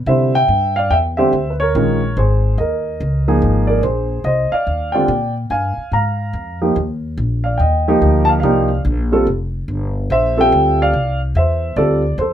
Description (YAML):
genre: jazz piano trio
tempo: 144 BPM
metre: 4/4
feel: swing 65% on 8ths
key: unclear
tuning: A4 = 440 Hz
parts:
  - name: upright bass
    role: bass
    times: 0.0-12.3 s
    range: F1 to C3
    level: -18 LUFS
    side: equal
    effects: none
  - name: warm upright piano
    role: melody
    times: 0.1-12.3 s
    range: D3 to Bb5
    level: -16 LUFS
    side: right 1 dB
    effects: none
room: light reverb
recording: none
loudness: -14 LUFS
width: side -10 dB against mid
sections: 0.1-12.3 A section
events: none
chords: 0.1 Cadd9; 1.7 Bbm9; 2.6 Eb5; 3.4 Ab6; 5.1 Bb7(no3); 6.8 Ebmaj9; 8.4 Cm11; 9.3 Fsus2; 10.1 Bb69; 11.8 Dm7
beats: | 0.07 0.49 0.91 1.33 | 1.75 2.17 2.58 3.00 | 3.42 3.84 4.25 4.67 | 5.09 5.51 5.93 6.34 | 6.76 7.18 7.59 8.01 | 8.43 8.85 9.26 9.68 | 10.10 10.51 10.93 11.35 | 11.76 12.18